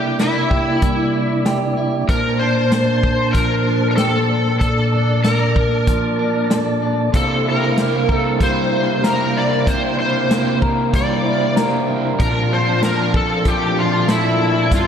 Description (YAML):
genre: dream pop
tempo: 95 BPM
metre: 4/4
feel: straight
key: unclear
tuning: A4 = 440 Hz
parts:
  - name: overdriven slide guitar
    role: melody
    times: 0.0-14.9 s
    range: E4 to D5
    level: -20 LUFS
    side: left 1 dB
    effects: ensemble chorus, analog delay
  - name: mellow tonewheel organ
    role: sustained chords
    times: 0.0-14.9 s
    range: G2 to A5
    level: -20 LUFS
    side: right 1 dB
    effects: fast rotary speaker
  - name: clean electric guitar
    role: arpeggios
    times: 0.0-14.9 s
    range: G2 to Bb4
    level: -22 LUFS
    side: left 2 dB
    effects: wide subtle chorus, analog delay
  - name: vintage drum kit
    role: drums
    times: 0.2-14.9 s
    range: hi-hat, kick drum, snare drum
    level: -20 LUFS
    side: equal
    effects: none
  - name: overdriven semi-hollow guitar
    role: accompaniment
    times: 7.1-14.9 s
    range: G2 to G4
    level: -24 LUFS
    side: right 2 dB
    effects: harmonic tremolo, lush chorus
room: wet lush hall reverb, RT60 1.9 s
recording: dreamy mix soaked in reverb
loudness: -15 LUFS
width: side -8 dB against mid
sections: 0.0-14.9 A section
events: none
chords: 0.0 C7; 2.1 Bbmaj7; 7.1 C7; 12.2 Bbmaj7